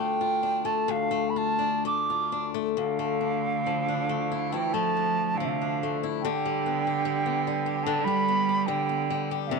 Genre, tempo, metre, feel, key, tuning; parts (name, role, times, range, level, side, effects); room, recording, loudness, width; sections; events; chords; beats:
celtic folk, Celtic slow air; 61-73 BPM; 4/4; rubato; D dorian; A4 = 440 Hz
bright wooden flute; melody; 0.0-9.6 s; E5 to D6; -28 LUFS; right 4 dB
picked swing-style acoustic guitar; accompaniment; 0.0-9.6 s; D2 to G4; -29 LUFS; left 13 dB
clear cello; second line; 2.7-9.6 s; C3 to G3; -30 LUFS; right 13 dB
light reverb, small room reverb; 1960s-style stereo with parts hard left and right; -24 LUFS; side -4 dB against mid
0.0-2.8 A section; 2.8-9.6 B section
0.0 Dm; 2.8 Dmadd9; 6.2 G/D
0.86 1.81 | 2.76 3.66 4.54 5.38 | 6.22 7.05 7.87 8.69 | 9.52